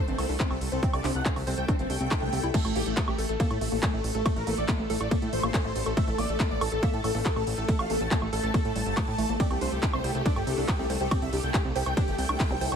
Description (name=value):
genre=psychedelic trance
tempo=140 BPM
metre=4/4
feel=straight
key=A phrygian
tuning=A4 = 440 Hz
part: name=dense compressed supersaw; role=melody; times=0.0-12.7 s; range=A3 to A5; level=-32 LUFS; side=equal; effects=phaser, sidechain pumping, dub echo
part: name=swarming drone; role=sustained chords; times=0.0-12.8 s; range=A3 to A4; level=-35 LUFS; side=left 1 dB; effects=built-in reverb, sidechain pumping
part: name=woody wave-folded pluck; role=riff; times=0.0-12.8 s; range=G3 to C5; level=-34 LUFS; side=moving between left 5 dB and right 6 dB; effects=chorus, auto-pan, sidechain pumping, ping-pong delay
part: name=fat analog bass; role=bass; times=0.1-12.8 s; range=G1 to A2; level=-31 LUFS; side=equal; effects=none
part: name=techno drum kit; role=drums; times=0.1-12.8 s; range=crash cymbal, handclaps, hi-hat, ride cymbal, woodblock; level=-34 LUFS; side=right 2 dB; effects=none
part: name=electronic kick drum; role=drums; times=0.4-12.5 s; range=none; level=-27 LUFS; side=equal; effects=none
part: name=swell and zap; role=sound effects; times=1.8-2.5, 12.5-12.6 s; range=none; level=-38 LUFS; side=left 3 dB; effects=none
room=little or no reverb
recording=none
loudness=-25 LUFS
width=side -7 dB against mid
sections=0.0-12.8 A section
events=swell 1.8-2.5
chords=0.0 C5; 2.5 A5; 9.4 C5